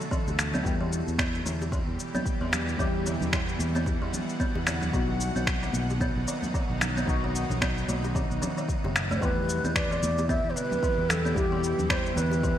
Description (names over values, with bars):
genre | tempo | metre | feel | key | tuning
organic downtempo | 112 BPM | 4/4 | swing 58% on 16ths | E minor | A4 = 439 Hz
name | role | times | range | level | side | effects
deep mellow chord stab | accompaniment | 0.0-12.6 s | F#3 to G4 | -38 LUFS | left 5 dB | chorus, sidechain pumping, digital delay
bowed-like drone | sustained chords | 0.0-12.6 s | B2 to F#5 | -34 LUFS | equal | built-in reverb, vintage 12-bit sampler grit, sidechain pumping
electronic cabasa and finger snaps | drums | 0.0-12.6 s | none | -31 LUFS | equal | overdrive, gated reverb
buzzing kalimba | arpeggios | 0.1-12.6 s | B2 to B3 | -32 LUFS | right 1 dB | digital delay
electronic kick drum | drums | 0.1-12.6 s | none | -30 LUFS | equal | overdrive
sustaining fretless electric bass | bass | 0.3-12.5 s | F#1 to E2 | -30 LUFS | equal | none
bongos and congas | percussion | 0.3-12.6 s | none | -38 LUFS | equal | none
breathy low ney | melody | 9.2-12.6 s | G4 to E5 | -29 LUFS | right 1 dB | digital delay
room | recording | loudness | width
moderate lush hall reverb, RT60 2.0 s, small room ambience | bright 1980s-style digital production | -25 LUFS | side -11 dB against mid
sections
0.0-12.6 A section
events
none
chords
0.0 D; 0.6 Em; 4.9 B; 9.2 Em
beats
0.11 | 0.65 1.19 1.72 2.26 | 2.79 3.33 3.86 4.40 | 4.93 5.47 6.01 6.54 | 7.08 7.61 8.15 8.69 | 9.22 9.76 10.29 10.83 | 11.36 11.90 12.44